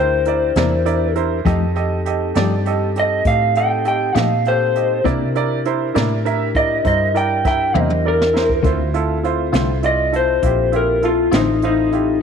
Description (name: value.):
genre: slow blues.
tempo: 67 BPM (dotted quarters).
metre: 12/8.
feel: straight.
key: unclear.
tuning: A4 = 439 Hz.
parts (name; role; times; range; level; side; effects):
electric guitar through a small old amp; melody; 0.0-12.2 s; Eb4 to G5; -18 LUFS; left 2 dB; none.
clear grand piano; accompaniment; 0.0-12.2 s; E4 to F5; -22 LUFS; right 10 dB; none.
mellow tonewheel organ; sustained chords; 0.0-12.2 s; C4 to Bb4; -27 LUFS; left 11 dB; slow rotary speaker.
vintage muted fingered electric bass; bass; 0.0-12.2 s; A1 to C3; -21 LUFS; equal; none.
jazz brush drum kit; drums; 0.3-12.1 s; hi-hat, kick drum, snare drum, toms; -22 LUFS; right 1 dB; none.
clean electric guitar; accompaniment; 0.6-11.5 s; C3 to G4; -24 LUFS; left 10 dB; harmonic tremolo.
room: light reverb, small room ambience.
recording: 1960s-style stereo with parts hard left and right.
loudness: -15 LUFS.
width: side -6 dB against mid.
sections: 0.0-12.2 A section.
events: drum fill 7.7-8.6.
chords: 0.0 C9; 1.5 F9; 5.0 C9; 8.6 Dm7.